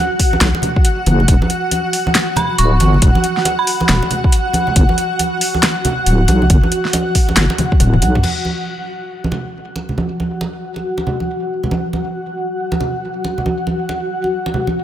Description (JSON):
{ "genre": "deep dubstep", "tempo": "138 BPM", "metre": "4/4", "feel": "swing 62% on 16ths, half-time", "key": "unclear", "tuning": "A4 = 440 Hz", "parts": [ { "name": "granular cloud pad", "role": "sustained chords", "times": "0.0-14.8 s", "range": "F#4 to F#5", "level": "-20 LUFS", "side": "equal", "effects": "built-in reverb" }, { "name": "deep house drum kit", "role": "drums", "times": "0.2-8.3 s", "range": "crash cymbal, handclaps, hi-hat, snare drum, toms", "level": "-17 LUFS", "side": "equal", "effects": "none" }, { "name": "electronic kick drum", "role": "drums", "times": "0.2-7.8 s", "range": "none", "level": "-13 LUFS", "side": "equal", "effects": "none" }, { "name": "congas", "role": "percussion", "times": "0.3-14.7 s", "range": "none", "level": "-21 LUFS", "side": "right 2 dB", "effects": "dub echo" }, { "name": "deep soft wobble bass", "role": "bass", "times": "0.4-8.2 s", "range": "D1 to B1", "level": "-13 LUFS", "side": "equal", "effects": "chorus" }, { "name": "dark detuned synth bell", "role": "melody", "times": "2.4-4.0 s", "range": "B5 to C#6", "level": "-21 LUFS", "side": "right 2 dB", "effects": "chorus, tremolo, dub echo" } ], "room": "light reverb, digital ambience", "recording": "none", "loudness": "-14 LUFS", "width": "side -11 dB against mid", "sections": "0.0-8.2 A section; 8.2-14.8 B section", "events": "drop 0.0-8.2; drum fill 7.6-8.2; filter sweep on ambient pad 8.2-14.8", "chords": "none", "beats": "0.41 0.85 | 1.28 1.72 2.15 2.59 | 3.02 3.46 3.89 4.33 | 4.76 5.20 5.63 6.06 | 6.50 6.93 7.37 7.80 | 8.24 8.67 9.11 9.54 | 9.98 10.41 10.85 11.28 | 11.72 12.15 12.59 13.02 | 13.46 13.89 14.32 14.76" }